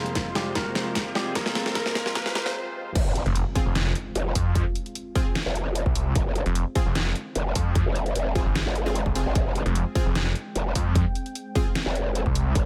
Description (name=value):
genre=heavy wobble dubstep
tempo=150 BPM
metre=4/4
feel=half-time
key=F minor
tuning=A4 = 440 Hz
part: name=electric guitar with an envelope filter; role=melody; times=0.0-2.5 s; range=G3 to Bb4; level=-35 LUFS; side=equal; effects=dub echo
part: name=lush unison pad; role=sustained chords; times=0.0-12.7 s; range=F2 to G5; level=-39 LUFS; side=equal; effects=chorus, sidechain pumping
part: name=riser and impact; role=sound effects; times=0.0-4.6 s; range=none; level=-37 LUFS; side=equal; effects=none
part: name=dubstep drum kit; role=drums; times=0.1-12.6 s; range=crash cymbal, hi-hat, snare drum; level=-32 LUFS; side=equal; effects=none
part: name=electronic kick drum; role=drums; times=0.2-12.6 s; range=none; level=-28 LUFS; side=equal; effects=none
part: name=growl bass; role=bass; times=3.0-12.7 s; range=F1 to Ab1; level=-28 LUFS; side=equal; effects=chorus, overdrive
part: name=snarling distorted saw bass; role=bass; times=3.3-12.5 s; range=F1 to F2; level=-26 LUFS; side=equal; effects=distortion, overdrive
part: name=supersaw stab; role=stabs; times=3.6-11.7 s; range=C4 to Ab4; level=-36 LUFS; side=equal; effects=dub echo
room=light reverb, digital ambience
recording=high-pass filter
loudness=-25 LUFS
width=mono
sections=0.0-3.0 A section; 3.0-12.7 B section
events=build-up 0.0-3.0; drum fill 0.0-2.6; riser 0.0-2.6; break 2.6-3.0; drop 3.0-12.7; impact 3.0-4.6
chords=0.0 Fm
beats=0.15 0.56 0.95 | 1.35 1.75 2.15 2.56 | 2.96 3.35 3.75 4.16 | 4.55 4.96 5.36 5.75 | 6.16 6.55 6.96 7.36 | 7.75 8.15 8.55 8.96 | 9.36 9.76 10.15 10.55 | 10.96 11.36 11.76 12.15 | 12.55